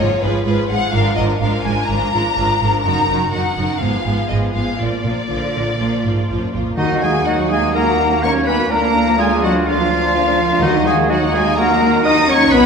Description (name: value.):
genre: quick classical-period movement for symphony orchestra.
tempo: 125 BPM.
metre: 4/4.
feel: straight.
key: Eb minor.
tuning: A4 = 436 Hz.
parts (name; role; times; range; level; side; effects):
rich studio violin section; melody; 0.0-12.7 s; Cb5 to Eb6; -20 LUFS; left 3 dB; none.
rich studio violin section; second line; 0.0-12.6 s; Bb3 to Bb4; -24 LUFS; left 2 dB; none.
rich studio viola section; accompaniment; 0.0-12.6 s; D3 to F4; -24 LUFS; right 2 dB; none.
clear studio cello section; bass; 0.0-12.7 s; F2 to Eb4; -22 LUFS; right 2 dB; none.
rich studio double bass section; bass; 0.0-12.7 s; Gb1 to Eb2; -23 LUFS; right 3 dB; none.
bright clarinet; second line; 6.8-12.7 s; Eb4 to Eb5; -22 LUFS; left 1 dB; none.
clear oboe; second line; 6.8-12.7 s; Eb4 to Eb5; -23 LUFS; right 2 dB; none.
mellow large flute ensemble; second line; 6.8-12.7 s; Bb4 to Bb5; -24 LUFS; right 1 dB; none.
clear bassoon; accompaniment; 6.8-12.7 s; Bb3 to Gb4; -21 LUFS; right 2 dB; none.
mellow French horn section; sustained chords; 6.8-12.7 s; Eb3 to Eb4; -21 LUFS; left 2 dB; none.
timpani; percussion; 6.8-7.5, 10.6-11.3 s; Eb3; -25 LUFS; left 2 dB; none.
room: wet scoring stage reverb, RT60 1.9 s.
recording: recorded in a church or concert hall.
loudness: -14 LUFS.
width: side -6 dB against mid.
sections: 0.0-6.8 A section; 6.8-12.7 B section.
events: none.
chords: 0.0 Abm6; 0.9 Bb7/Ab; 2.8 Ebm/Gb; 3.8 Fdim/Ab; 4.8 Bb; 6.8 Ebm; 8.7 Bb/D; 10.6 Ebm.